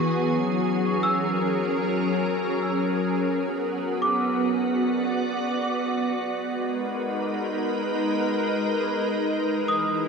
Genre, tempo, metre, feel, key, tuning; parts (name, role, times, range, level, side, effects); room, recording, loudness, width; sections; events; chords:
ambient; 56 BPM; 3/4; straight; F# mixolydian; A4 = 439 Hz
soft additive organ-like pad; sustained chords; 0.0-10.1 s; E3 to D5; -23 LUFS; equal; ensemble chorus, built-in reverb
worn celesta; arpeggios; 0.0-10.1 s; C#6 to E6; -30 LUFS; equal; tape echo
wet cathedral reverb, RT60 5.2 s; -23 LUFS; side -5 dB against mid
0.0-10.1 A section
0.0 F#; 3.2 Bm; 6.4 G#m